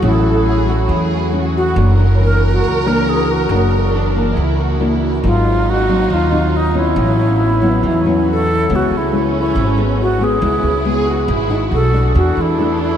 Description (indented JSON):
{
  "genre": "bossa nova",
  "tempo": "138 BPM",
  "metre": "4/4",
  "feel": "straight",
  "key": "A major",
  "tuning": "A4 = 440 Hz",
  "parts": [
    { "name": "bright alto flute", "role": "melody", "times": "0.0-13.0 s", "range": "D#4 to A#4", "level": "-18 LUFS", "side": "left 1 dB", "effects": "none" },
    { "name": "warm symphonic violin section", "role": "second line", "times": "0.0-13.0 s", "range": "B3 to A#4", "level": "-23 LUFS", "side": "right 2 dB", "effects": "ping-pong delay" },
    { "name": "nylon-string guitar", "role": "accompaniment", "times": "0.0-13.0 s", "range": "F#2 to F#4", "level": "-18 LUFS", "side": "left 1 dB", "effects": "analog chorus" },
    { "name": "warm grand piano", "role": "accompaniment", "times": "0.0-13.0 s", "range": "A3 to F#5", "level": "-29 LUFS", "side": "right 3 dB", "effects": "none" },
    { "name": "upright bass", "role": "bass", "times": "0.0-13.0 s", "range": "F#1 to E2", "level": "-17 LUFS", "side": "equal", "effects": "none" }
  ],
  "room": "wet huge ambient reverb, RT60 8.3 s",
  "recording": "dreamy mix soaked in reverb",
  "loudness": "-13 LUFS",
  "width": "side -9 dB against mid",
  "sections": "0.0-8.7 A section; 8.7-13.0 B section",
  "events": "none",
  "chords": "0.0 A6; 1.8 F#7b13; 5.2 G#7; 7.0 A69; 8.7 C#m7; 11.7 B7; 12.1 E9sus4",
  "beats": "| 0.02 0.46 0.89 1.32 | 1.76 2.19 2.62 3.06 | 3.49 3.92 4.36 4.79 | 5.22 5.66 6.09 6.52 | 6.96 7.39 7.82 8.26 | 8.69 9.12 9.55 9.99 | 10.42 10.85 11.28 11.72 | 12.15 12.58"
}